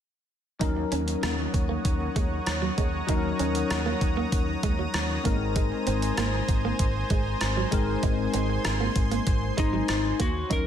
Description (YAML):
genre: 1980s-style pop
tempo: 97 BPM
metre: 4/4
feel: straight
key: Eb dorian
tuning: A4 = 440 Hz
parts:
  - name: bell-like tine electric piano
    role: accompaniment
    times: 0.6-10.7 s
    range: Gb3 to Bb4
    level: -31 LUFS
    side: left 5 dB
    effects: analog chorus
  - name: lush unison pad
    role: sustained chords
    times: 1.0-10.5 s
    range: C5 to Eb6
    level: -33 LUFS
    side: right 1 dB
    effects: chorus
  - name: direct-recorded clean electric guitar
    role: riff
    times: 0.6-10.6 s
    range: Gb3 to Eb4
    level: -34 LUFS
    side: right 9 dB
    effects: lush chorus, digital delay
  - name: fretless electric bass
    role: bass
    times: 0.6-10.7 s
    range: Ab1 to Eb2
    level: -30 LUFS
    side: equal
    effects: ensemble chorus
  - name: gated 80s digital drum machine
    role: drums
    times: 0.6-10.7 s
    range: hi-hat, kick drum, rim click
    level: -28 LUFS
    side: equal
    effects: gated reverb
  - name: lightly driven lead guitar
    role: melody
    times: 9.6-10.7 s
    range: Eb4 to Bb4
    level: -28 LUFS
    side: left 4 dB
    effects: digital delay
room: light reverb, digital ambience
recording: none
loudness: -24 LUFS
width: side -9 dB against mid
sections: 0.6-10.5 A section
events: none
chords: 0.6 Ebm7; 5.2 Abadd9; 10.2 Ebm7